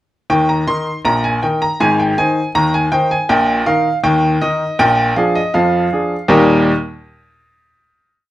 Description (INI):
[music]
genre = ragtime piano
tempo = 80 BPM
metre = 2/4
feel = straight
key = Eb major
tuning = A4 = 442 Hz
[part]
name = bright baby grand piano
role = solo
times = 0.3-6.7 s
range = Ab1 to C6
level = -12 LUFS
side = equal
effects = none
[sound]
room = moderate studio reverb, RT60 0.6 s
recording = none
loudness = -12 LUFS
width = side -15 dB against mid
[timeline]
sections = 0.3-6.3 A section; 6.3-7.8 final chord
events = none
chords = 0.3 Eb5; 1.8 Ab; 3.3 Eb5/Bb; 4.8 Bb7; 6.3 Eb